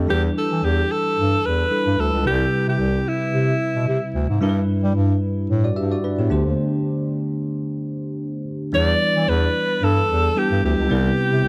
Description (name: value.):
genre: 1980s-style pop.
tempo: 111 BPM.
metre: 4/4.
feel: swing 55% on 16ths.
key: E minor.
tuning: A4 = 440 Hz.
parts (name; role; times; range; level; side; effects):
bell-like tine electric piano; accompaniment; 0.0-11.5 s; G2 to A5; -25 LUFS; equal; phaser.
mellow bass clarinet; bass; 0.0-11.5 s; C2 to G3; -23 LUFS; equal; none.
bright alto saxophone; melody; 0.1-4.2, 8.7-11.5 s; E4 to D5; -24 LUFS; equal; none.
room: moderate plate reverb, RT60 2.7 s.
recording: dark, warm production.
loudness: -21 LUFS.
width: mono.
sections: 0.1-8.7 A section; 8.7-11.5 B section.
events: break 6.6-8.7.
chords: 0.1 Em7; 2.3 Cmaj7; 4.4 G6; 6.3 D7sus4; 8.7 Em7; 10.9 Cmaj7.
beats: | 0.09 0.63 1.17 1.72 | 2.25 2.80 3.34 3.88 | 4.42 4.96 5.50 6.04 | 6.58 7.12 7.66 8.20 | 8.74 9.28 9.82 10.36 | 10.90 11.44.